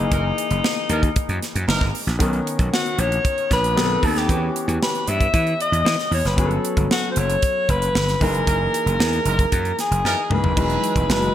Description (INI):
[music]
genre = polished 1980s jazz-funk pop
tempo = 115 BPM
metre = 4/4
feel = straight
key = unclear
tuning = A4 = 435 Hz
[part]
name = breathy alto saxophone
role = melody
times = 0.0-11.3 s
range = D#4 to E5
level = -22 LUFS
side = left 2 dB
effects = none
[part]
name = clear baby grand piano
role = accompaniment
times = 0.0-11.3 s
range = D#3 to A#4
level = -27 LUFS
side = left 2 dB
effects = wide subtle chorus
[part]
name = gritty slap bass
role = bass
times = 0.0-11.3 s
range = E1 to E3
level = -22 LUFS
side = equal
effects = overdrive
[part]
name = clear horn section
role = second line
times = 0.1-1.8, 8.5-10.2 s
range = E3 to A#4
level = -28 LUFS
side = right 3 dB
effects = none
[part]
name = tight funk drum kit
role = drums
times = 0.1-11.3 s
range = crash cymbal, hi-hat, kick drum, snare drum, toms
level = -23 LUFS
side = right 1 dB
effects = gated reverb
[part]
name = warm analog pad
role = sustained chords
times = 10.6-11.3 s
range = E3 to D#5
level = -27 LUFS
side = equal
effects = chorus
[sound]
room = moderate plate reverb, RT60 1.4 s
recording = bright 1980s-style digital production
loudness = -18 LUFS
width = side -11 dB against mid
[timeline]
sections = 0.0-10.6 A section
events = band accent 0.1-2.2, 8.5-10.6; drum fill 10.0-10.6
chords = 0.0 F#13; 2.2 Bmaj9; 3.8 B7b9; 4.3 Em6; 6.4 Gmaj9#11; 8.2 F#13; 10.6 Emaj9